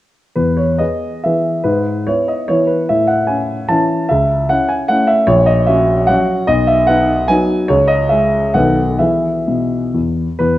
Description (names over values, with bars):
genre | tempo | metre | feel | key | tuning
classical, romantic triple-time dance for piano with dotted rhythms | 122-159 BPM | 3/4 | rubato | E major | A4 = 441 Hz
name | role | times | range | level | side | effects
warm grand piano | solo | 0.4-10.6 s | A#1 to A5 | -12 LUFS | equal | none
room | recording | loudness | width
moderate recital hall reverb, RT60 1.4 s | worn, warbling old tape, cassette tape, warbly pitch drift | -12 LUFS | side -15 dB against mid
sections
0.4-10.4 A section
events
none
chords
0.4 E; 1.6 E/G#; 2.9 Amaj7; 4.1 A/C#; 5.3 F#7/A#; 6.5 B; 7.7 C#m; 8.6 B7; 9.0 E